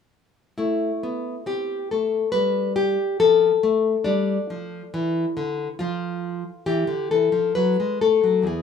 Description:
classical, baroque-style dance for nylon-string guitar; 69 BPM; 3/4; rubato; A4 = 441 Hz
nylon-string guitar; solo; 0.6-8.6 s; E2 to B4; -20 LUFS; left 4 dB
wet small room reverb, RT60 0.5 s; rough home demo mix, small room ambience; -20 LUFS; side -7 dB against mid
0.6-8.6 A section
0.6 Am; 2.3 N.C.; 3.2 Dm/F; 4.9 Dsus2; 5.8 Dmadd9; 7.6 B5/F#

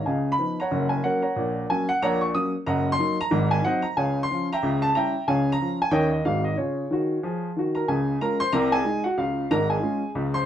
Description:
jazz, stride piano; 184 BPM; 4/4; swing 59% on 8ths; Db major; A4 = 440 Hz
warm upright piano; solo; 0.0-10.5 s; F#1 to D#6; -22 LUFS; equal
moderate studio reverb, RT60 0.5 s; heard from further back in the room, nothing above 10.5 kHz; -22 LUFS; side -10 dB against mid
0.0-7.9 A section; 7.9-10.5 B section
0.1 C#9; 0.7 F#; 1.4 F#/A#; 2.7 Ebm/Gb; 3.3 Ab7; 4.0 Db; 4.6 Dbdim7; 5.3 Db; 5.9 Eb7; 6.2 Ab7; 6.6 Db; 8.5 Ab/C; 9.2 Db

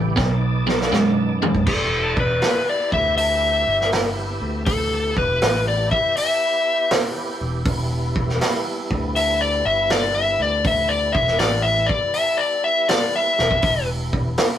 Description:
blues rock power trio and southern rock; 80 BPM; 4/4; swing 67% on 8ths; E minor; A4 = 439 Hz
overdriven tonewheel organ; sustained chords; 0.0-14.6 s; G3 to A5; -30 LUFS; right 2 dB; slow rotary speaker, chorus vibrato
biting overdriven guitar; riff; 0.0-1.6 s; E2 to G#3; -20 LUFS; right 2 dB
picked electric bass; bass; 0.0-14.4 s; E1 to F#2; -25 LUFS; equal
vintage drum kit; drums; 0.2-14.6 s; crash cymbal, hi-hat, kick drum, snare drum, toms; -23 LUFS; right 1 dB
overdriven slide guitar; melody; 1.7-13.9 s; A4 to E5; -19 LUFS; left 2 dB
moderate small room reverb, RT60 0.5 s; rough rehearsal-room recording; -17 LUFS; side -10 dB against mid
0.0-1.7 A section; 1.7-14.6 B section
drum fill 0.2-1.7, 13.3-13.6; electric slide guitar solo 1.7-14.6
0.2 B7#9; 1.7 Em

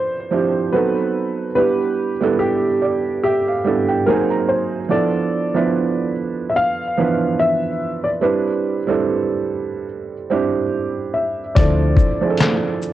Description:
lo-fi hip hop; 72 BPM; 4/4; swing 56% on 16ths; D dorian; A4 = 440 Hz
dark upright piano; melody; 0.0-12.9 s; G4 to F5; -21 LUFS; left 2 dB; low-pass filter, cassette tape, tape echo
felt-muted upright piano; accompaniment; 0.0-12.9 s; E3 to A#5; -19 LUFS; right 4 dB; low-pass filter, cassette tape
vintage muted fingered electric bass; bass; 11.6-11.9 s; D2; -17 LUFS; left 2 dB; transformer saturation
trip hop sampler-style drum kit; drums; 11.6-12.9 s; handclaps, hi-hat, kick drum, shaker, snare drum; -16 LUFS; left 2 dB; cassette tape
light reverb; home recording on cassette; -16 LUFS; side -13 dB against mid
0.0-12.9 A section
0.0 Dm9; 0.7 B7b9; 1.6 Em7; 4.1 G#9; 4.9 Dm69; 8.2 Cmaj7; 11.6 Dm9

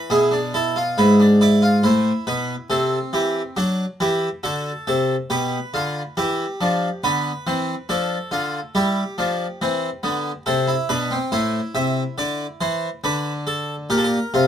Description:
classical, baroque-style 3-part fugue for harpsichord; 69 BPM; 4/4; straight; A4 = 440 Hz
harpsichord; solo; 0.0-14.5 s; G#2 to E5; -18 LUFS; equal
moderate studio reverb, RT60 0.5 s; close, detailed microphones; -19 LUFS; side -9 dB against mid
0.1-14.5 A section
0.1 E7/B; 1.8 Am; 3.6 D7; 5.3 G/B; 7.0 Bdim/D; 8.8 Em; 10.5 Am; 12.2 D5; 13.9 Gm/Bb

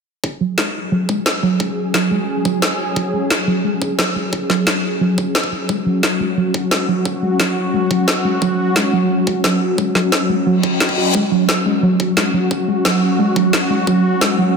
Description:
dark technical drum and bass; 176 BPM; 4/4; straight; A4 = 439 Hz
sweeping resonant pad; sustained chords; 0.8-14.6 s; F#3 to G#4; -20 LUFS; left 2 dB; chorus, sidechain pumping
electronic kick drum; drums; 0.2-13.9 s; -24 LUFS; equal; overdrive, high-pass filter on kick, studio reverb, high-pass filter on room
warbly dusty pluck; arpeggios; 0.4-14.5 s; F#3 to F#4; -19 LUFS; right 3 dB; chorus, sidechain pumping, dub echo
electronic snare drum; drums; 0.6-14.3 s; -20 LUFS; equal; overdrive, studio reverb
reverse cymbal; sound effects; 10.6-11.1 s; -22 LUFS; left 5 dB
wet plate reverb, RT60 2.0 s; dense, heavily limited modern master; -14 LUFS; side -5 dB against mid
0.2-14.6 A section
filter sweep on synth arpeggio sound 0.2-14.6; reverse cymbal 10.6-11.1
0.2 F#5

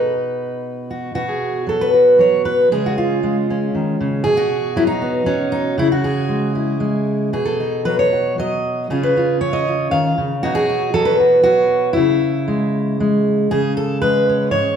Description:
folk, solo fingerstyle acoustic guitar; 117 BPM; 3/4; rubato; B mixolydian; A4 = 440 Hz
fingerpicked steel-string acoustic guitar; solo; 0.0-14.8 s; G#2 to E#5; -15 LUFS; equal
wet large studio reverb, RT60 1.2 s; heard from further back in the room; -15 LUFS; side -8 dB against mid
0.0-1.2 A section; 1.2-13.5 B section; 13.5-14.8 A section
0.0 B; 1.2 B5; 2.7 C#; 4.2 B; 5.8 C#m; 7.3 B; 8.9 C#; 10.4 B; 12.0 C#m; 13.5 C#5

